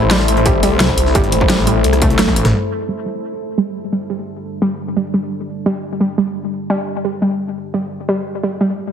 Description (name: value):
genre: dark technical drum and bass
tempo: 173 BPM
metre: 4/4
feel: straight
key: unclear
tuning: A4 = 439 Hz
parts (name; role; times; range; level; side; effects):
- deep dark ambient pad; sustained chords; 0.0-8.9 s; G3 to A5; -22 LUFS; left 1 dB; chorus, built-in reverb, sidechain pumping
- snarling distorted saw bass; bass; 0.0-2.5 s; G1 to C2; -17 LUFS; equal; distortion, overdrive
- dubstep drum kit; drums; 0.0-2.5 s; hi-hat, rim click, snare drum, toms; -18 LUFS; equal; small room ambience
- warbly dusty pluck; arpeggios; 0.1-8.7 s; G3 to A3; -19 LUFS; right 1 dB; chorus, sidechain pumping, ping-pong delay
- breakbeat sampler-style drum kit; drums; 0.1-2.5 s; hi-hat, snare drum; -27 LUFS; equal; none
- electronic kick drum; drums; 0.5-2.3 s; none; -18 LUFS; equal; distortion, small room ambience
room: moderate digital room reverb, RT60 1.2 s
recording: heavily compressed radio sound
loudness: -15 LUFS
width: side -8 dB against mid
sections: 0.0-2.5 A section; 2.5-8.9 B section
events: drop 0.0-2.5; drum fill 2.2-2.5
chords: 0.0 Am; 2.5 Gsus2; 8.1 Am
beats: 0.11 0.46 0.80 | 1.15 1.50 1.84 2.19 | 2.54 2.88 3.23 3.58 | 3.92 4.27 4.62 4.96 | 5.31 5.66 6.01 6.35 | 6.70 7.05 7.39 7.74 | 8.09 8.43 8.78